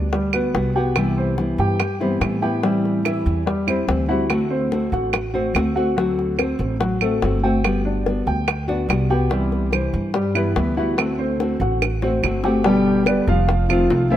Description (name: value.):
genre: latin, Cuban son and guajira.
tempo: 144 BPM.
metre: 4/4.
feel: straight.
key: G major.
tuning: A4 = 440 Hz.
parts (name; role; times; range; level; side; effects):
nylon-string guitar; accompaniment; 0.0-14.2 s; B2 to G4; -22 LUFS; left 1 dB; none.
dark baby grand piano; arpeggios; 0.0-14.2 s; E3 to G5; -23 LUFS; equal; none.
upright bass; bass; 0.0-14.2 s; F1 to A2; -24 LUFS; equal; none.
bongos; percussion; 0.1-14.2 s; none; -27 LUFS; left 4 dB; none.
claves; percussion; 0.3-13.9 s; none; -27 LUFS; right 11 dB; none.
room: light reverb.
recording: none.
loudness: -18 LUFS.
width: side -11 dB against mid.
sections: 0.0-12.7 A section; 12.7-14.2 B section.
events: drum fill 11.8-12.7.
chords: 0.0 Gmaj7; 1.0 Cmaj7; 2.6 Am7; 4.3 D7; 7.6 Gmaj7; 9.3 Cmaj7; 11.0 D7; 12.7 G; 13.5 F7.